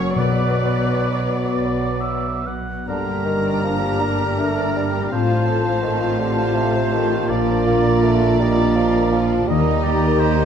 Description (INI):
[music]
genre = classical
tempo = 43-58 BPM (dotted quarters)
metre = 6/8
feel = rubato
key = G minor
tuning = A4 = 440 Hz
[part]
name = warm studio violin section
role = melody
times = 0.0-10.4 s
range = B4 to Bb5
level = -32 LUFS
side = left 3 dB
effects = none
[part]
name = flute section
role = second line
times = 0.0-10.4 s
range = A5 to D6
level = -29 LUFS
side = right 3 dB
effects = none
[part]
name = mellow clarinet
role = second line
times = 0.0-10.4 s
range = D4 to G4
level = -29 LUFS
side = equal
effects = none
[part]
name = warm studio violin section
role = second line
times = 0.0-10.4 s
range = Bb3 to D5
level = -29 LUFS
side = left 1 dB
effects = none
[part]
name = clear bassoon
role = accompaniment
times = 0.0-10.3 s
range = C3 to Bb3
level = -26 LUFS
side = right 3 dB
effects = none
[part]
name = warm studio viola section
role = accompaniment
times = 0.0-10.4 s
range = D4 to D5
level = -28 LUFS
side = equal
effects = none
[part]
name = concert harp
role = arpeggios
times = 0.0-10.4 s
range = F#2 to Eb5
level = -25 LUFS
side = left 7 dB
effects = none
[part]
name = mellow French horn section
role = sustained chords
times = 0.1-10.4 s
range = B2 to G4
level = -25 LUFS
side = left 4 dB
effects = none
[part]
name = clear oboe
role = second line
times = 0.2-10.4 s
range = Bb4 to F#5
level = -29 LUFS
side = right 2 dB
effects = none
[part]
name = rich studio cello section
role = bass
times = 0.2-10.4 s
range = Eb2 to B2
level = -25 LUFS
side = right 5 dB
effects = none
[part]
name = rich studio double bass section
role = bass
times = 0.2-10.4 s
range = G1 to Eb2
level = -25 LUFS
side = right 4 dB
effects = none
[part]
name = timpani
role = percussion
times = 0.2-1.5 s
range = B2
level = -29 LUFS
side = left 4 dB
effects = none
[sound]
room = wet scoring stage reverb, RT60 1.6 s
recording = none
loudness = -17 LUFS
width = side -8 dB against mid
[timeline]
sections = 0.0-2.9 A section; 2.9-10.4 B section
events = none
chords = 0.2 Bm; 2.9 Gm; 5.1 F/A; 7.3 Bb; 9.5 Eb